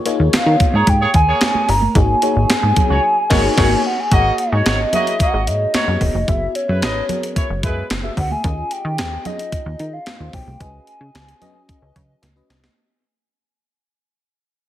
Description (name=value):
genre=early-eighties boogie funk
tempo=111 BPM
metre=4/4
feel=straight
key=G# minor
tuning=A4 = 444 Hz
part: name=FM electric piano with soft pad layer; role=accompaniment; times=0.1-12.7 s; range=A#3 to E5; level=-24 LUFS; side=left 4 dB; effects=chorus, phaser
part: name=clean 12-bit digital drum machine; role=drums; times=0.1-12.8 s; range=crash cymbal, hi-hat, kick drum, snare drum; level=-19 LUFS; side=equal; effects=gated reverb
part: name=plucky analog bass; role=bass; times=0.2-12.7 s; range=E1 to D#3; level=-19 LUFS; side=equal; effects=none
part: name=hollow clarinet-like synth lead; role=melody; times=0.3-12.2 s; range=C#5 to A#5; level=-20 LUFS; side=equal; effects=chorus
part: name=congas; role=percussion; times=0.3-12.8 s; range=none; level=-29 LUFS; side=right 4 dB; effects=none
part: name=mellow horn section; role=second line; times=0.7-7.8 s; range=G#3 to D#5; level=-23 LUFS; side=right 2 dB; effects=none
room=digital ambience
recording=none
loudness=-14 LUFS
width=side -12 dB against mid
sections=0.0-4.1 A section; 4.1-12.8 B section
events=band accent 3.0-4.1; fade-out 4.1-12.8; drum fill 12.2-12.8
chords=0.0 D#9sus4; 2.0 G#9sus4; 6.3 F#9sus4; 8.4 D#9sus4; 10.6 C#9sus4